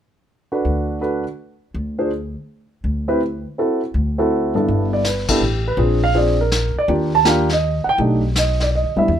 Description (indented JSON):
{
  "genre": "jazz piano trio",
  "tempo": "164 BPM",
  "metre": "3/4",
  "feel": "swing 66% on 8ths",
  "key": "G major",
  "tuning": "A4 = 440 Hz",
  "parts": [
    { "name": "dark grand piano", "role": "melody", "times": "0.5-9.2 s", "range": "G2 to A5", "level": "-18 LUFS", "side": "right 1 dB", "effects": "none" },
    { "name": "upright bass", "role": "bass", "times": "0.6-9.2 s", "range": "G1 to E2", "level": "-21 LUFS", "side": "left 1 dB", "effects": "none" },
    { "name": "vintage brush drum kit", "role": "drums", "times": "4.7-9.2 s", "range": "brushed snare drum, hi-hat, kick drum, ride cymbal, snare drum", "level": "-24 LUFS", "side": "left 2 dB", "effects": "none" }
  ],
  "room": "light reverb",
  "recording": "minimal, uncompressed stereo recording",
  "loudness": "-16 LUFS",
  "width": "side -9 dB against mid",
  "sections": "0.3-4.7 A section; 4.7-9.2 B section",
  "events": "band accent 5.2",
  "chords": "0.3 D6; 4.7 G6; 5.8 Bb7; 6.9 Ebmaj9; 8.0 Baug",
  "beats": "| 0.28 0.65 1.01 | 1.38 1.75 2.11 | 2.48 2.85 3.21 | 3.58 3.95 4.32 | 4.68 5.05 5.42 | 5.78 6.15 6.52 | 6.89 7.25 7.62 | 7.99 8.35 8.72 | 9.09"
}